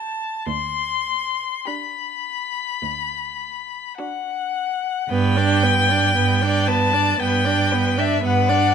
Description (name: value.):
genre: classical, slow romantic movement for string quartet.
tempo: 51-59 BPM.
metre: 4/4.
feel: rubato.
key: G major.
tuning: A4 = 441 Hz.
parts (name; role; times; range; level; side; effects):
rich violin; melody; 0.0-8.7 s; E5 to C6; -21 LUFS; left 5 dB; none.
rich violin; second line; 0.0-8.7 s; F#4 to D5; -27 LUFS; left 2 dB; none.
rich viola; accompaniment; 0.0-8.7 s; B3 to E4; -24 LUFS; right 4 dB; none.
rich cello; bass; 0.5-8.7 s; D2 to G2; -22 LUFS; right 5 dB; none.
room: light reverb.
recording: close, detailed microphones.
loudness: -18 LUFS.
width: side -7 dB against mid.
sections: 0.0-5.1 A section; 5.1-8.7 B section.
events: none.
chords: 0.5 G/D; 5.1 G.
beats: | 0.49 1.66 2.83 3.98 | 5.10 6.15 7.20 8.23.